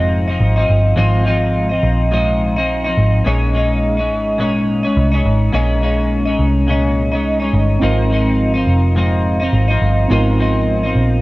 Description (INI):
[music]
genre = indie pop, bedroom pop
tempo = 105 BPM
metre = 4/4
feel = swing 55% on 16ths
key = Ab major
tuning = A4 = 444 Hz
[part]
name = twelve-string electric guitar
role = accompaniment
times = 0.0-11.2 s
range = Ab2 to Eb4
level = -16 LUFS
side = left 1 dB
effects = lush chorus, vibrato effect
[part]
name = vintage muted picked electric bass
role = bass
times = 0.0-11.2 s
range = F1 to C2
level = -16 LUFS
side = equal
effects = none
[part]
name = tine electric piano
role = accompaniment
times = 7.8-11.2 s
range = Cb4 to Bb4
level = -21 LUFS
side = right 3 dB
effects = cassette tape
[sound]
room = moderate spring reverb, RT60 1.5 s, digital ambience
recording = worn, warbling old tape, cassette tape, warbly pitch drift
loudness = -13 LUFS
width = side -19 dB against mid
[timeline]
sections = 0.0-11.2 A section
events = none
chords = 0.0 Ab6; 3.3 Eb7sus4; 7.8 Ab6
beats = 0.41 | 0.98 1.55 2.12 2.69 | 3.26 3.83 4.40 4.97 | 5.54 6.11 6.68 7.25 | 7.82 8.39 8.96 9.53 | 10.10 10.67